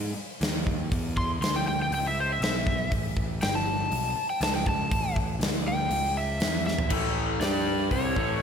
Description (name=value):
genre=blues rock power trio and southern rock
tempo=120 BPM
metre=4/4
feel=straight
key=A mixolydian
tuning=A4 = 440 Hz
part: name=fuzz picked electric bass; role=bass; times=0.0-8.4 s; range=G1 to G#2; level=-31 LUFS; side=equal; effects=overdrive
part: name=big rock drum kit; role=drums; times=0.4-8.3 s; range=crash cymbal, hi-hat, kick drum, snare drum, toms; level=-29 LUFS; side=equal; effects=none
part: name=overdriven slide guitar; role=melody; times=1.2-8.4 s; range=C5 to C6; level=-29 LUFS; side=left 1 dB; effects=slapback echo, analog delay
part: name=raw garage guitar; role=riff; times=6.9-8.4 s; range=A2 to G4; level=-27 LUFS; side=left 1 dB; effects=overdrive
room=moderate lush hall reverb, RT60 1.8 s, small room ambience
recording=big arena sound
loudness=-24 LUFS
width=side -7 dB against mid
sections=0.0-6.9 A section; 6.9-8.4 B section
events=electric slide guitar solo 0.0-6.9; drum fill 6.7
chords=0.0 E7; 2.9 A7; 6.9 A5; 7.4 G5; 7.9 A7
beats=0.41 | 0.91 1.41 1.91 2.40 | 2.90 3.40 3.90 4.40 | 4.90 5.40 5.90 6.40 | 6.90 7.40 7.91 8.41